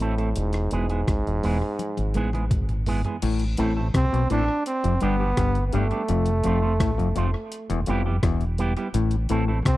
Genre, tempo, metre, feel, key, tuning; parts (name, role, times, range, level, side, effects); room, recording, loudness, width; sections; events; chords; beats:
roots reggae; 84 BPM; 4/4; straight; A minor from 3.2 s; A4 = 440 Hz
bright trombone; melody; 0.0-9.8 s; G#2 to D4; -27 LUFS; right 2 dB; dub echo
electric guitar with an envelope filter; accompaniment; 0.0-9.6 s; F3 to A4; -30 LUFS; right 4 dB; dub echo
deep dub fingered electric bass; bass; 0.0-9.8 s; E1 to C2; -24 LUFS; equal
breakbeat sampler-style drum kit; drums; 0.0-9.8 s; crash cymbal, hi-hat, kick drum, rim click, toms; -28 LUFS; equal
overdriven clav; riff; 3.2-9.8 s; E2 to C3; -27 LUFS; left 5 dB
digital ambience; dry, close 1970s-style studio recording; -21 LUFS; side -16 dB against mid
0.0-3.2 A section; 3.2-9.8 B section
drum fill 1.8-3.2
0.4 E; 3.2 Am; 4.7 G; 6.1 F; 7.5 Em; 8.9 Am
| 0.36 1.08 1.79 2.51 | 3.23 3.94 4.66 5.37 | 6.09 6.80 7.51 8.23 | 8.94 9.66